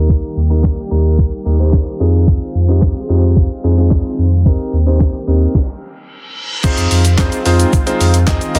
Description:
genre	dance-pop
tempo	110 BPM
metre	4/4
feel	straight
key	F minor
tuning	A4 = 440 Hz
part	bright concert grand piano	accompaniment	0.0-8.6 s	Bb3 to Eb5	-21 LUFS	equal	sidechain pumping
part	lush unison pad	sustained chords	0.0-8.6 s	Eb3 to G4	-27 LUFS	equal	chorus, phaser, sidechain pumping
part	warm sub bass	bass	0.0-8.6 s	Eb2 to F2	-15 LUFS	equal	sidechain pumping
part	clean 12-bit digital drum machine	drums	0.1-8.6 s	crash cymbal, handclaps, hi-hat, kick drum, shaker, snare drum	-17 LUFS	equal	none
part	reverse cymbal	sound effects	6.1-6.6 s	none	-28 LUFS	equal	none
part	egg shaker	percussion	6.6-8.6 s	none	-39 LUFS	equal	none
room	little or no reverb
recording	dense, heavily limited modern master, low-pass filter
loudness	-14 LUFS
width	mono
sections	0.0-6.6 A section; 6.6-8.6 B section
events	filter sweep 0.0-6.6; stop 5.5-6.6; reverse cymbal 6.1-6.6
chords	0.0 Eb; 2.0 Fm7; 4.5 Cm7/Eb; 6.6 Fm7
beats	| 0.09 0.64 1.19 1.73 | 2.28 2.82 3.37 3.91 | 4.46 5.00 5.55 6.09 | 6.64 7.18 7.73 8.28

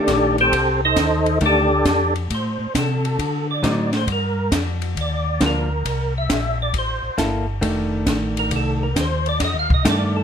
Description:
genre	soul jazz organ trio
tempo	135 BPM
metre	4/4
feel	swing 67% on 8ths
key	F mixolydian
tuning	A4 = 441 Hz
part	percussive tonewheel organ	melody	0.0-10.2 s	C4 to F5	-21 LUFS	equal	slow rotary speaker, chorus vibrato
part	hollow-body jazz guitar	accompaniment	0.0-10.2 s	D3 to A4	-23 LUFS	equal	none
part	mellow tonewheel organ	bass	0.1-10.2 s	F1 to D3	-23 LUFS	left 1 dB	chorus vibrato, slow rotary speaker
part	compact cocktail drum kit	drums	0.1-10.0 s	hi-hat, kick drum, ride cymbal, snare drum	-24 LUFS	equal	none
room	moderate studio reverb, RT60 0.8 s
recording	minimal, uncompressed stereo recording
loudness	-18 LUFS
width	side -7 dB against mid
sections	0.0-10.2 A section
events	tonewheel organ solo 0.0-10.2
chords	0.0 F13; 2.3 Am; 3.2 D7b9; 4.1 Gm7; 5.9 C6; 7.6 F13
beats	0.08 | 0.53 0.97 1.41 1.86 | 2.30 2.75 3.19 3.63 | 4.08 4.52 4.97 5.41 | 5.86 6.30 6.74 7.19 | 7.63 8.08 8.52 8.96 | 9.41 9.85

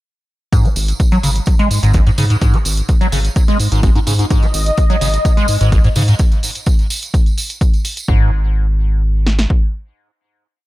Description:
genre	acid house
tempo	127 BPM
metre	4/4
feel	straight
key	unclear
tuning	A4 = 440 Hz
part	liquid acid bass	riff	0.5-8.3 s	G#1 to G#3	-17 LUFS	equal	phaser, overdrive, wide subtle chorus, tape echo
part	electronic hi-hat	drums	0.5-8.1 s	none	-27 LUFS	equal	none
part	punchy analog drum machine	drums	0.5-9.6 s	kick drum, snare drum	-13 LUFS	equal	none
part	tambourine	percussion	0.5-8.1 s	none	-26 LUFS	right 4 dB	none
part	round analog bass	bass	0.8-9.5 s	G#1 to G#2	-16 LUFS	equal	sidechain pumping
part	warm analog pad	sustained chords	4.3-6.2 s	D#5	-21 LUFS	left 2 dB	chorus, sidechain pumping
room	little or no reverb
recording	dry, gritty hardware recording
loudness	-12 LUFS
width	side -18 dB against mid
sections	0.5-8.1 groove; 8.1-10.7 final note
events	none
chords	0.5 G#5; 8.1 N.C.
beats	| 0.53 1.00 1.47 1.94 | 2.42 2.89 3.36 3.83 | 4.31 4.78 5.25 5.72 | 6.20 6.67 7.14 7.61 | 8.09 8.56 9.03 9.50

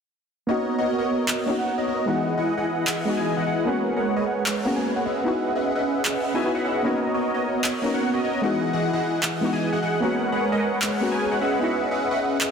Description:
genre	future bass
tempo	151 BPM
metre	4/4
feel	half-time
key	B major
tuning	A4 = 441 Hz
part	soft round pluck	accompaniment	0.5-12.5 s	G#3 to F#4	-27 LUFS	left 2 dB	chorus, dub echo
part	big bright polysynth	riff	0.5-12.5 s	E3 to G#5	-23 LUFS	equal	wide subtle chorus, dub echo
part	electronic handclaps	drums	1.3-12.5 s	none	-29 LUFS	equal	none
room	moderate huge ambient reverb, RT60 3.8 s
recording	dense, heavily limited modern master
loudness	-21 LUFS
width	side -6 dB against mid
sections	0.5-12.5 A section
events	filter sweep on analog polysynth 0.5-12.5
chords	0.5 Bmaj9; 2.1 Emaj7; 3.7 G#m11; 5.1 C#m11; 6.8 Bmaj9; 8.4 Emaj7; 10.0 G#m11; 11.4 C#m11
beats	| 0.49 0.89 1.28 1.68 | 2.08 2.47 2.87 3.27 | 3.67 4.06 4.46 4.86 | 5.26 5.65 6.05 6.45 | 6.84 7.24 7.64 8.04 | 8.44 8.83 9.23 9.63 | 10.02 10.42 10.82 11.22 | 11.61 12.01 12.41

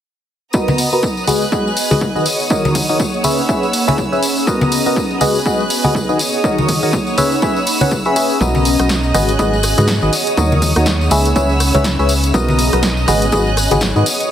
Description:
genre	piano house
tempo	122 BPM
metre	4/4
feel	swing 58% on 16ths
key	unclear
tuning	A4 = 440 Hz
part	clear studio violin section	sustained chords	0.5-14.3 s	B3 to F#6	-23 LUFS	right 1 dB	sidechain pumping
part	barking FM electric piano	riff	0.5-14.1 s	D#3 to F#5	-17 LUFS	equal	phaser, vintage 12-bit sampler grit, sidechain pumping, low-pass filter, digital delay
part	electronic kick drum	drums	0.5-13.9 s	none	-20 LUFS	equal	overdrive, high-pass filter on kick, studio reverb
part	tambourine and congas	percussion	0.5-14.3 s	none	-21 LUFS	left 2 dB	none
part	ethereal airy pad	texture	1.2-14.3 s	A#3 to D#5	-22 LUFS	equal	ensemble chorus, built-in reverb, sidechain pumping
part	punchy analog drum machine	drums	0.8-14.3 s	hi-hat, rim click, snare drum	-22 LUFS	right 1 dB	overdrive, studio reverb
part	organ-like FM bass	bass	8.4-14.0 s	G#1 to G#2	-17 LUFS	equal	sidechain pumping
room	light reverb, digital ambience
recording	heavily compressed radio sound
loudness	-12 LUFS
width	side -10 dB against mid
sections	0.5-14.3 A section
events	filter sweep on FM electric piano 0.5-14.3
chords	0.5 Bmaj7; 1.3 G#m7; 2.3 D#m7; 3.2 C#m7; 4.5 Bmaj7; 5.2 G#m7; 6.2 D#m7; 7.2 C#m7; 8.4 Bmaj7; 9.1 G#m7; 10.1 D#m7; 11.1 C#m7; 12.3 Bmaj7; 13.1 G#m7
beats	| 0.54 1.03 1.52 2.01 | 2.51 3.00 3.49 3.98 | 4.47 4.96 5.46 5.95 | 6.44 6.93 7.42 7.92 | 8.41 8.90 9.39 9.88 | 10.38 10.87 11.36 11.85 | 12.34 12.83 13.32 13.82 | 14.31

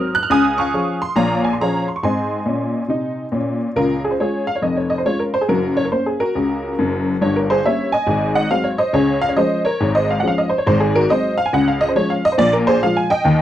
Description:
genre	jazz, stride piano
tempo	139 BPM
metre	4/4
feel	swing 64% on 8ths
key	Db major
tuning	A4 = 441 Hz
part	honky-tonk upright piano	solo	0.0-13.4 s	F1 to Gb6	-16 LUFS	equal	none
room	light reverb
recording	dry, close 1970s-style studio recording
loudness	-16 LUFS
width	side -12 dB against mid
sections	0.0-3.8 A section; 3.8-13.4 B section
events	none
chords	0.3 Db; 1.2 Bbm7; 2.0 Ab; 3.8 Db; 4.6 Db/F; 5.5 Gb; 7.2 Gdim; 8.1 Ab7; 8.9 Db; 10.7 Ab7; 11.5 Db; 12.4 Bb5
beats	| 0.30 0.73 1.17 1.60 | 2.03 2.46 2.89 3.32 | 3.76 4.19 4.62 5.05 | 5.48 5.92 6.35 6.78 | 7.21 7.64 8.07 8.51 | 8.94 9.37 9.80 10.23 | 10.66 11.09 11.52 11.95 | 12.38 12.81 13.25

